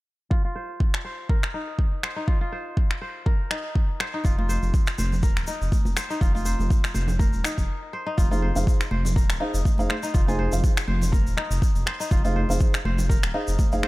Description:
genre	afro house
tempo	122 BPM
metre	4/4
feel	swing 56% on 16ths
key	F minor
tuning	A4 = 439 Hz
part	kora	arpeggios	0.3-13.9 s	Eb4 to C5	-32 LUFS	left 1 dB	sidechain pumping, low-pass filter, dub echo
part	electronic kick drum	drums	0.3-13.7 s	none	-21 LUFS	equal	none
part	electronic finger snaps	drums	0.9-13.9 s	none	-30 LUFS	equal	none
part	dark detuned saw bass	bass	4.2-13.8 s	Eb1 to F1	-26 LUFS	equal	sidechain pumping
part	congas	percussion	4.2-13.8 s	none	-33 LUFS	right 2 dB	none
part	tube shaker	percussion	4.2-13.8 s	none	-38 LUFS	left 2 dB	none
part	felt-muted upright piano	stabs	8.3-13.9 s	Eb4 to Ab5	-30 LUFS	right 1 dB	vintage 12-bit sampler grit, sidechain pumping, dub echo
room	little or no reverb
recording	dark, warm production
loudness	-21 LUFS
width	side -19 dB against mid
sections	0.3-8.2 A section; 8.2-13.9 B section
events	break 7.7-8.2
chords	0.3 F5; 8.2 Fm7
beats	| 0.31 0.80 1.29 1.79 | 2.28 2.77 3.26 3.75 | 4.25 4.74 5.23 5.72 | 6.21 6.70 7.20 7.69 | 8.18 8.67 9.16 9.65 | 10.15 10.64 11.13 11.62 | 12.11 12.61 13.10 13.59

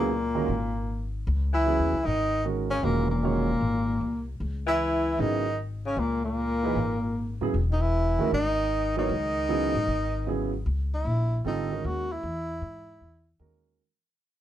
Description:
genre	modal jazz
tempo	153 BPM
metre	4/4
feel	swing 66% on 8ths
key	C# dorian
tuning	A4 = 440 Hz
part	breathy tenor saxophone	melody	0.0-13.4 s	A#3 to F#4	-28 LUFS	equal	none
part	mellow tenor saxophone	second line	0.0-10.5 s	A#2 to E3	-34 LUFS	left 4 dB	none
part	warm concert grand piano	accompaniment	0.0-13.8 s	C#3 to C#5	-30 LUFS	right 6 dB	none
part	upright bass	bass	0.0-13.8 s	E1 to G#2	-29 LUFS	left 1 dB	none
room	light reverb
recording	dark, warm production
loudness	-24 LUFS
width	side -12 dB against mid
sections	0.0-10.7 A section; 10.7-13.8 B section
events	fade-out 10.7-13.8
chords	0.0 C#m69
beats	0.10 0.49 0.88 | 1.27 1.67 2.06 2.45 | 2.84 3.23 3.63 4.02 | 4.41 4.80 5.19 5.58 | 5.98 6.37 6.76 7.15 | 7.54 7.93 8.32 8.71 | 9.10 9.49 9.88 10.28 | 10.66 11.05 11.45 11.84 | 12.22 12.62 13.01 13.40

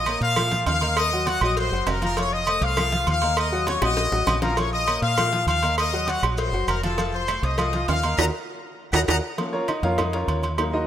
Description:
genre	latin, salsa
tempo	200 BPM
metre	4/4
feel	straight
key	Bb harmonic minor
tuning	A4 = 440 Hz
part	brilliant trumpet section	melody	0.0-9.2 s	Gb4 to Eb6	-24 LUFS	left 3 dB	none
part	deep dub fingered electric bass	bass	0.0-10.9 s	F1 to Bb2	-26 LUFS	equal	none
part	bright grand piano	accompaniment	0.1-10.9 s	F3 to Gb5	-28 LUFS	equal	none
part	agogo bells and timbales	percussion	0.1-10.7 s	none	-28 LUFS	right 6 dB	none
part	claves	percussion	0.1-10.7 s	none	-36 LUFS	right 1 dB	none
part	congas	percussion	0.1-10.9 s	none	-38 LUFS	equal	none
part	cowbell and bongos	percussion	0.1-10.7 s	none	-32 LUFS	left 4 dB	none
part	maracas	percussion	0.1-9.1 s	none	-42 LUFS	right 2 dB	none
room	light reverb, studio reverb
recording	rough home demo mix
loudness	-20 LUFS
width	side -10 dB against mid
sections	0.0-9.4 A section; 9.4-10.9 B section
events	drum fill 3.7-4.6, 8.2-9.4; band accent 8.2-9.4; grand piano solo 9.4-10.9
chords	0.0 Bbm; 1.0 Ebm; 2.2 F7; 3.4 Ebm; 4.6 Bbm; 5.8 Ebm; 7.0 F7; 8.2 Ebm; 9.4 Bbm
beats	0.06 0.36 0.67 | 0.97 1.27 1.57 1.87 | 2.17 2.47 2.77 3.07 | 3.37 3.67 3.98 4.28 | 4.58 4.88 5.18 5.48 | 5.78 6.08 6.38 6.68 | 6.98 7.28 7.58 7.88 | 8.18 8.48 8.78 9.08 | 9.38 9.68 9.98 10.28 | 10.58

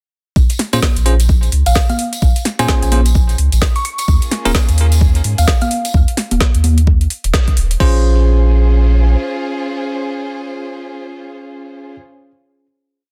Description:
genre	UK garage, two-step garage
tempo	129 BPM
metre	4/4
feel	swing 60% on 16ths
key	Bb minor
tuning	A4 = 440 Hz
part	saturated sub bass	bass	0.4-9.2 s	Eb1 to Bb2	-14 LUFS	equal	none
part	electronic kick drum	drums	0.4-7.9 s	none	-16 LUFS	equal	overdrive
part	tambourine	percussion	0.4-5.9 s	none	-31 LUFS	equal	none
part	garage drum kit	drums	0.5-7.9 s	congas, crash cymbal, hi-hat, snare drum	-22 LUFS	equal	overdrive
part	bell-like tine electric piano	stabs	0.7-4.5, 7.8-11.9 s	Db4 to C5	-24 LUFS	equal	delay
part	thumb-piano-like synth pluck	melody	1.7-5.9 s	F5 to Db6	-25 LUFS	equal	chorus, phaser, delay
part	rich studio violin section	sustained chords	4.1-12.0 s	Bb3 to C5	-30 LUFS	equal	sidechain pumping
room	little or no reverb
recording	dense, heavily limited modern master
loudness	-14 LUFS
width	mono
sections	0.4-7.8 drop; 7.8-11.5 final chord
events	drop 0.4-7.8; band accent 7.3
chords	0.4 Bbm7; 4.1 Eb7sus4; 7.8 Bbm7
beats	| 0.36 0.82 1.29 1.75 | 2.22 2.69 3.15 3.62 | 4.08 4.55 5.01 5.48 | 5.94 6.41 6.87 7.34 | 7.80 8.27 8.73 9.20 | 9.66 10.13 10.59 11.06

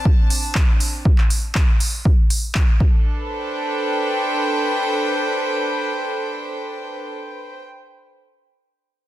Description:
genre	deep house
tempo	120 BPM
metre	4/4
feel	swing 53% on 16ths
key	A minor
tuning	A4 = 440 Hz
part	rich chamber string section	texture	0.0-7.6 s	C4 to A5	-22 LUFS	right 1 dB	sidechain pumping
part	electronic kick drum	drums	0.1-2.9 s	none	-16 LUFS	equal	none
part	deep house drum kit	drums	0.3-2.7 s	handclaps, hi-hat	-25 LUFS	equal	none
room	light reverb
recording	dense, heavily limited modern master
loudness	-17 LUFS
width	side -14 dB against mid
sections	0.0-3.1 A section; 3.1-7.1 B section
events	none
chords	0.0 Amadd11; 2.8 Asus4; 3.1 Am11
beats	0.05 0.55 | 1.05 1.55 2.05 2.55 | 3.05 3.55 4.05 4.55 | 5.05 5.55 6.05 6.55

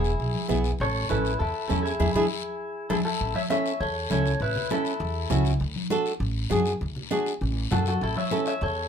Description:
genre	latin, cumbia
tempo	200 BPM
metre	4/4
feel	straight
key	A major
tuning	A4 = 438 Hz
part	clean electric guitar	melody	0.0-5.4, 7.7-8.9 s	E4 to E5	-28 LUFS	left 2 dB	spring reverb
part	flamenco guitar	accompaniment	0.0-8.5 s	B3 to A4	-27 LUFS	right 2 dB	none
part	upright bass	bass	0.0-8.9 s	E1 to F#2	-27 LUFS	equal	none
part	guiro	percussion	0.0-8.9 s	none	-38 LUFS	left 8 dB	none
part	congas	percussion	0.3-8.8 s	none	-32 LUFS	left 2 dB	none
room	light reverb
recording	minimal, uncompressed stereo recording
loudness	-24 LUFS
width	side -7 dB against mid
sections	0.0-3.2 A section; 3.2-8.9 B section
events	band accent 2.0-3.2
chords	0.0 E; 0.8 A; 2.0 E7; 3.2 A; 5.6 D; 8.0 A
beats	0.20 0.50 | 0.80 1.10 1.40 1.70 | 2.00 2.30 2.60 2.90 | 3.20 3.50 3.80 4.10 | 4.40 4.71 5.00 5.31 | 5.61 5.91 6.21 6.51 | 6.81 7.11 7.41 7.71 | 8.01 8.31 8.61

